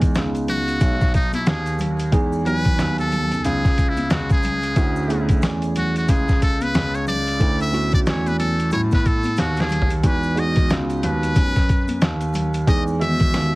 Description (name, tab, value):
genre	hip hop, jazz-hop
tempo	91 BPM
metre	4/4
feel	swing 61% on 16ths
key	E major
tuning	A4 = 439 Hz
part	tine electric piano	accompaniment	0.0-13.6 s	D#3 to G#5	-24 LUFS	right 2 dB	wide subtle chorus
part	dark grand piano	bass	0.0-13.6 s	B1 to A2	-23 LUFS	equal	none
part	lo-fi sampler-style drum kit	drums	0.0-13.5 s	hi-hat, kick drum, snare drum, toms	-19 LUFS	equal	none
part	maracas and congas	percussion	0.0-13.5 s	none	-32 LUFS	left 2 dB	none
part	trumpet with metal mute	melody	0.5-13.6 s	D#4 to E5	-25 LUFS	equal	tape echo
room	little or no reverb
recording	heavily compressed radio sound, vinyl crackle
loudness	-17 LUFS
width	side -21 dB against mid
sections	0.0-13.6 A section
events	muted trumpet solo 0.0-13.6; drum fill 9.4-10.0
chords	0.0 Emaj9; 4.8 Dmaj9; 10.0 Emaj9